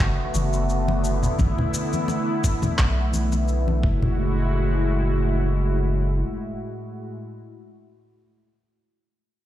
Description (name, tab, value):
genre	sunset chillout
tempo	86 BPM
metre	4/4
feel	swing 54% on 16ths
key	F# minor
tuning	A4 = 441 Hz
part	lush unison pad	sustained chords	0.0-7.2 s	A2 to F#4	-26 LUFS	equal	chorus, phaser
part	round analog bass	bass	0.0-6.2 s	F#1 to B1	-22 LUFS	equal	none
part	electronic handclaps and shaker	drums	0.0-3.6 s	none	-31 LUFS	left 1 dB	overdrive, small room ambience
part	electronic kick drum	drums	0.0-4.0 s	none	-23 LUFS	equal	overdrive, small room ambience
part	congas	percussion	0.3-4.2 s	none	-28 LUFS	left 2 dB	none
room	light reverb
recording	played on a big sound system in a bare room, stone room reverb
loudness	-20 LUFS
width	side -12 dB against mid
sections	0.0-4.2 A section; 4.2-7.0 B section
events	filter sweep on analog synth bass 0.0-4.2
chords	0.0 Bm7; 3.8 F#m9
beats	0.00 0.69 | 1.39 2.09 2.79 3.48 | 4.18 4.88 5.58 6.28